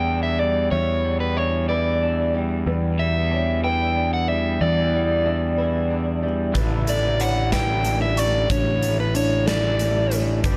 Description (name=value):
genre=post-rock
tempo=62 BPM (dotted quarters)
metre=6/8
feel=straight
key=unclear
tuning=A4 = 440 Hz
part: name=overdriven electric guitar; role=melody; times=0.0-10.2 s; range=B4 to G5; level=-26 LUFS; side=equal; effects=tape echo
part: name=electric guitar through a small old amp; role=arpeggios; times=0.0-10.6 s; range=E2 to E4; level=-31 LUFS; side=equal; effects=analog chorus, tape echo
part: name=felt-muted upright piano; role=arpeggios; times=0.0-10.6 s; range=D4 to C#6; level=-35 LUFS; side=equal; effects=tape echo
part: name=fuzz picked electric bass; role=bass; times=0.0-10.6 s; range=G1 to E2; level=-25 LUFS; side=equal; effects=overdrive
part: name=pedal steel guitar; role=sustained chords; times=6.5-10.6 s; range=B2 to G4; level=-37 LUFS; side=equal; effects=none
part: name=huge arena drum kit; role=drums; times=6.5-10.6 s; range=hi-hat, kick drum, snare drum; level=-28 LUFS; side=equal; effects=none
room=small room ambience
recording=dark, warm production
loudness=-21 LUFS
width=mono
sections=0.0-10.6 A section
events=none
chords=0.0 Em7; 6.6 Asus4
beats=| 0.72 1.70 | 2.67 3.64 | 4.61 5.58 | 6.56 7.53 | 8.50 9.47 | 10.45